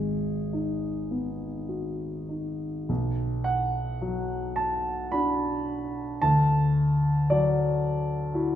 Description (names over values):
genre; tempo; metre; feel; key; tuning
classical, impressionist solo piano; 49-58 BPM; 3/4; rubato; B minor; A4 = 439 Hz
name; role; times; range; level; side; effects
warm grand piano; solo; 0.0-8.6 s; G#1 to B5; -25 LUFS; equal; none
room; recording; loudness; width
wet recital hall reverb, RT60 1.5 s; minimal, uncompressed stereo recording; -25 LUFS; side -10 dB against mid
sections
0.0-2.9 A section; 2.9-8.6 B section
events
none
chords
0.0 G#m7; 2.9 Bm; 6.2 D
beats
0.53 1.70 | 2.89 4.01 5.12 | 6.22 7.30 8.34